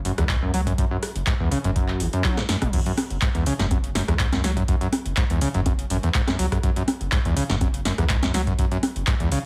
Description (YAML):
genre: acid house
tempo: 123 BPM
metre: 4/4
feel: swing 53% on 16ths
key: unclear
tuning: A4 = 440 Hz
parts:
  - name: round analog bass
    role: bass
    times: 0.0-9.4 s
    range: F#1 to C#2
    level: -29 LUFS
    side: equal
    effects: tube saturation, sidechain pumping
  - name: overdriven acid bass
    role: riff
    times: 0.1-9.4 s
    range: E2 to F#3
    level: -27 LUFS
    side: equal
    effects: tube saturation, analog chorus, sidechain pumping, tape echo
  - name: electro analog drum machine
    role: drums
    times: 0.1-9.4 s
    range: congas, crash cymbal, handclaps, hi-hat, rim click, snare drum, toms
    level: -29 LUFS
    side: equal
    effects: overdrive
  - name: electronic kick drum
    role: drums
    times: 0.3-9.2 s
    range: none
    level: -27 LUFS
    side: equal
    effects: overdrive
room: moderate studio reverb, RT60 0.6 s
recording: heavily compressed radio sound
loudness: -23 LUFS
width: mono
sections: 0.0-2.7 A section; 2.7-9.5 B section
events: drum fill 2.2-2.7; drop 2.7-9.5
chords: 0.0 F#5